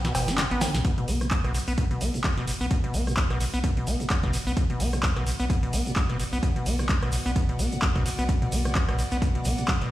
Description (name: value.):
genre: acid house.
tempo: 129 BPM.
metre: 4/4.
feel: swing 57% on 16ths.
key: B minor.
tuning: A4 = 439 Hz.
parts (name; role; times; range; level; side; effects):
deep acid bass; riff; 0.0-9.9 s; A2 to D4; -29 LUFS; equal; dub echo.
warm sub bass; bass; 0.0-9.9 s; F#1 to B1; -29 LUFS; equal; sidechain pumping.
booming analog drum machine; drums; 0.0-9.9 s; cowbell, handclaps, hi-hat, rim click, snare drum, toms; -30 LUFS; equal; none.
egg shaker; percussion; 0.2-9.8 s; none; -38 LUFS; right 1 dB; none.
electronic kick drum; drums; 0.8-9.8 s; none; -26 LUFS; equal; overdrive.
rich chamber string section; texture; 0.8-9.9 s; B3 to F#5; -40 LUFS; left 2 dB; sidechain pumping.
room: light reverb, digital ambience.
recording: played on a big sound system in a bare room, large studio reverb.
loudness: -23 LUFS.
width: side -15 dB against mid.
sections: 0.8-9.9 A section.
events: break 0.0-0.8; drum fill 0.0-0.8; fade-in on string section 0.8-9.9.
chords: 0.0 Bm.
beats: 0.38 | 0.85 1.31 1.78 2.24 | 2.71 3.17 3.64 4.10 | 4.57 5.03 5.50 5.96 | 6.43 6.89 7.36 7.82 | 8.29 8.75 9.22 9.68.